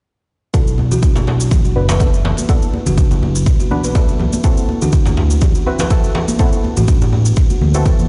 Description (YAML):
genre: afro house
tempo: 123 BPM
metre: 4/4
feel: swing 55% on 16ths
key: unclear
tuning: A4 = 440 Hz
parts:
  - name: buzzing kalimba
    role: arpeggios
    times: 0.5-8.0 s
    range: B3 to E5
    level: -27 LUFS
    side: equal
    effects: sidechain pumping, low-pass filter, digital delay
  - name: deep mellow chord stab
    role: stabs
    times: 0.5-7.8 s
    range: B3 to B4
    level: -26 LUFS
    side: equal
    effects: chorus, sidechain pumping, digital delay
  - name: smooth synth bass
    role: bass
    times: 0.5-8.1 s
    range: F#1 to E2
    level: -18 LUFS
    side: equal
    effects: sidechain pumping
  - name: electronic kick drum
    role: drums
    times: 0.5-8.0 s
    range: none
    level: -16 LUFS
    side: equal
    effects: none
  - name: shaker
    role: drums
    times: 0.5-8.1 s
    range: none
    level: -31 LUFS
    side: equal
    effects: none
  - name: congas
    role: percussion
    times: 0.8-8.1 s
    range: none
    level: -25 LUFS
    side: equal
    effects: none
  - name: djembe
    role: percussion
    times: 0.8-8.0 s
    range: none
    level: -26 LUFS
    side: equal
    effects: none
room: light reverb, studio reverb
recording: played on a big sound system in a bare room, stone room reverb, nothing above 10.6 kHz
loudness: -15 LUFS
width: mono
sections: 0.5-8.1 A section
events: none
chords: 0.5 Bm7; 4.4 D7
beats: | 0.54 1.03 1.52 2.00 | 2.49 2.98 3.47 3.96 | 4.44 4.93 5.42 5.91 | 6.40 6.88 7.37 7.86